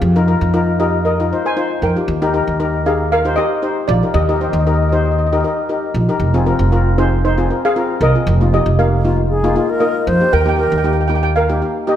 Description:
calypso; 116 BPM; 4/4; straight; Eb major; A4 = 440 Hz
steel pan; accompaniment; 0.0-12.0 s; Bb3 to C5; -19 LUFS; left 3 dB
upright bass; bass; 0.0-11.6 s; F1 to F2; -16 LUFS; right 1 dB
steel pan; melody; 0.8-12.0 s; Eb4 to Ab5; -19 LUFS; equal
baroque flute; second line; 9.3-11.0 s; Ab4 to C5; -18 LUFS; right 1 dB
moderate scoring stage reverb, RT60 1.9 s; -13 LUFS; side -10 dB against mid
0.0-6.2 A section; 6.2-12.0 A section
0.0 Bbsus4/F; 2.1 Ebadd9; 6.2 Fm7; 8.3 Bbsus4/F; 10.3 Ebadd9

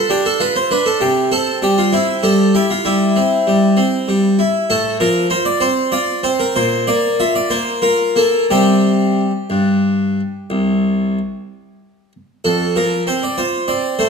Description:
classical, baroque-style suite movement for harpsichord; 59-66 BPM (dotted quarters); 12/8; rubato; F major; A4 = 440 Hz
harpsichord; solo; 0.0-14.1 s; C2 to E5; -14 LUFS; equal
moderate recital hall reverb, RT60 1.3 s; minimal, uncompressed stereo recording; -14 LUFS; side -5 dB against mid
0.0-12.4 A section; 12.4-14.1 A section
0.0 G7; 1.0 C; 4.7 F/A; 6.6 Bb5; 8.5 C5; 12.4 F

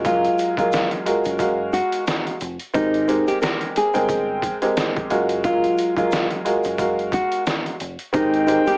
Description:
hip hop, boom-bap hip-hop; 89 BPM; 4/4; swing 56% on 16ths; A4 = 440 Hz
warm upright piano; accompaniment; 0.0-8.8 s; Gb3 to G5; -22 LUFS; right 1 dB; high-pass filter, low-pass filter, plate reverb
deep dub fingered electric bass; bass; 0.0-8.6 s; F1 to Ab1; -33 LUFS; equal
trip hop sampler-style drum kit; drums; 0.0-8.8 s; hi-hat, kick drum, snare drum; -26 LUFS; equal
nylon-string guitar; melody; 0.1-8.8 s; Eb4 to Bb4; -20 LUFS; equal; high-pass filter, low-pass filter, plate reverb
tube shaker; percussion; 0.1-8.8 s; -45 LUFS; left 1 dB
warm horn section; stabs; 8.1-8.8 s; C4 to G5; -22 LUFS; left 1 dB; high-pass filter, low-pass filter
moderate small room ambience, RT60 0.5 s; vinyl crackle, small speaker sound; -18 LUFS; side -27 dB against mid
0.0-8.8 A section
0.0 Gbmaj9; 2.7 Abmaj9; 5.1 Gbmaj9; 8.1 Abmaj9

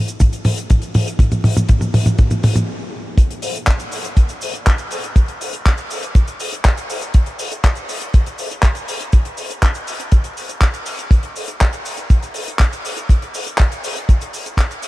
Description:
italo disco; 121 BPM; 4/4; straight
damped 70s drum kit; drums; 0.1-14.9 s; cabasa, handclaps, hi-hat, toms; -20 LUFS; equal; small room ambience
kick drum; drums; 0.2-14.7 s; -12 LUFS; equal; small room ambience
light reverb; vinyl crackle; -15 LUFS; side -18 dB against mid
0.0-3.2 A section; 3.2-14.9 B section
drum fill 0.0-2.7; stop 2.7-3.2

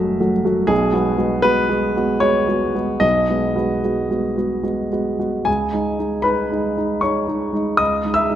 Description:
neoclassical minimalist piano; 76 BPM; 3/4; uneven beats, rubato; C# minor; A4 = 440 Hz
warm grand piano; solo; 0.0-8.4 s; F#1 to E6; -17 LUFS; equal
moderate concert hall reverb, RT60 1.8 s; -17 LUFS; side -11 dB against mid
0.0-5.5 A section; 5.5-8.4 A section
0.0 F#m7; 0.7 B6; 5.5 C#madd9

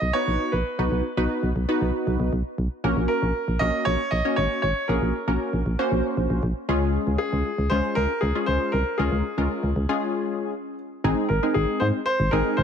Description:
synth-pop; 117 BPM; 4/4; straight; A4 = 441 Hz
clear baby grand piano; melody; 0.0-12.6 s; Ab4 to D#5; -26 LUFS; equal; tape echo
solid FM bass; bass; 0.0-12.6 s; Ab1 to Ab2; -24 LUFS; equal
funky polysynth comp; accompaniment; 0.1-12.6 s; Ab3 to Db5; -26 LUFS; left 1 dB; chorus
light reverb, studio reverb; -22 LUFS; side -7 dB against mid
0.0-11.0 A section; 11.0-12.6 B section
break 10.0-11.0
0.0 B; 2.8 Gb; 6.7 Db; 11.0 Ab

